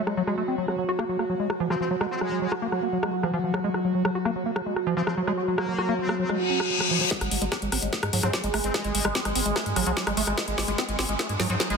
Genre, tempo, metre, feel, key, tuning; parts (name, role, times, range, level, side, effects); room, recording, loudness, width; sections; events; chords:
psychedelic trance; 147 BPM; 4/4; straight; A4 = 436 Hz
overtone-sweeping drone; sustained chords; 0.0-11.8 s; F#3 to G#4; -29 LUFS; right 2 dB; chorus, built-in reverb, phaser, sidechain pumping
liquid acid bass; riff; 0.0-11.8 s; E#3 to F#4; -28 LUFS; moving between left 2 dB and right 4 dB; chorus, auto-pan, sidechain pumping, tape echo
garage drum kit; drums; 0.1-11.8 s; hi-hat, rim click, snare drum; -29 LUFS; left 1 dB; soft clipping on snare, low-pass filter on snare, small room ambience, low-pass filter on hats
metallic wobble bass; second line; 1.7-2.5, 5.0-11.7 s; G#3 to B#3; -36 LUFS; left 4 dB; distortion, chorus, sidechain pumping, high-pass filter, tape echo
reverse cymbal and riser; sound effects; 6.4-11.8 s; -30 LUFS; left 4 dB
electronic kick drum; drums; 7.1-11.7 s; -33 LUFS; equal; high-pass filter on kick, small room ambience
round analog bass; bass; 7.2-11.8 s; G#1 to G#2; -31 LUFS; equal
moderate lush hall reverb, RT60 1.9 s; dense, heavily limited modern master; -23 LUFS; side -5 dB against mid
0.0-7.1 A section; 7.1-11.8 B section
filter sweep on synth drone 0.0-7.1; reverse cymbal 6.4-7.1; build-up 7.1-11.8; drum fill 7.1-11.8; filter sweep on acid bass 7.1-11.8
0.0 F#sus2; 0.6 F#5; 7.1 G#7(no3)